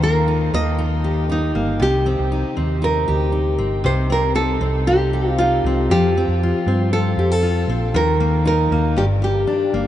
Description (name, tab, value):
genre	acoustic pop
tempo	117 BPM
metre	4/4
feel	straight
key	unclear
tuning	A4 = 440 Hz
part	nylon-string guitar	melody	0.0-9.7 s	Eb4 to Eb5	-21 LUFS	right 1 dB	none
part	fingerpicked steel-string acoustic guitar	accompaniment	0.0-9.9 s	G2 to A4	-21 LUFS	left 3 dB	none
part	hollow-body short-scale fingered electric bass	bass	0.0-9.9 s	G1 to G2	-20 LUFS	equal	none
room	moderate huge ambient reverb, RT60 8.6 s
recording	in a vast, echoing space, nothing above 11.0 kHz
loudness	-16 LUFS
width	side -12 dB against mid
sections	0.0-9.9 A section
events	none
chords	0.0 Eb; 1.8 Cm; 5.9 F; 7.9 Eb5; 9.0 Gm